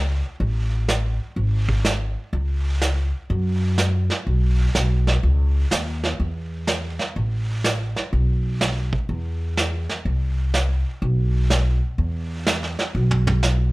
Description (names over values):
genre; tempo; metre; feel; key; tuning
country, western swing; 124 BPM; 4/4; swing 67% on 8ths; E major; A4 = 440 Hz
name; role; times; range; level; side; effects
upright bass; bass; 0.0-13.7 s; G#1 to F#2; -20 LUFS; equal; none
vintage brush drum kit; drums; 0.4-13.7 s; brushed snare drum, hi-hat, kick drum, snare drum, toms; -24 LUFS; right 2 dB; none
room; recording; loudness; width
little or no reverb; none; -20 LUFS; side -22 dB against mid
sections
0.0-13.7 A section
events
drum fill 12.9-13.4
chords
none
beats
| 0.40 0.88 1.37 1.85 | 2.33 2.82 3.30 3.78 | 4.27 4.75 5.23 5.71 | 6.20 6.68 7.16 7.64 | 8.12 8.61 9.09 9.57 | 10.05 10.53 11.02 11.50 | 11.98 12.46 12.94 13.42